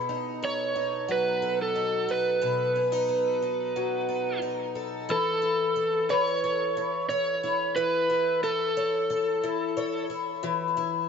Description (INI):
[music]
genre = dream pop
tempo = 90 BPM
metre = 4/4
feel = straight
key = unclear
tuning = A4 = 444 Hz
[part]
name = picked twelve-string acoustic guitar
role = arpeggios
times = 0.0-11.1 s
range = B2 to C#5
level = -28 LUFS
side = left 3 dB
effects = wide subtle chorus, digital delay
[part]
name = overdriven slide guitar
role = melody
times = 0.4-10.1 s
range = A4 to C#5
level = -26 LUFS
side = right 2 dB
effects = digital delay
[sound]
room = moderate plate reverb, RT60 2.4 s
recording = dark, warm production, nothing above 7.8 kHz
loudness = -24 LUFS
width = side -6 dB against mid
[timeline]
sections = 0.0-5.1 A section; 5.1-11.1 B section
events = none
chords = 0.0 B7; 5.1 A/E; 10.4 C#m/E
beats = 0.42 1.09 1.76 | 2.42 3.09 3.76 4.42 | 5.09 5.76 6.42 7.09 | 7.76 8.42 9.09 9.76 | 10.42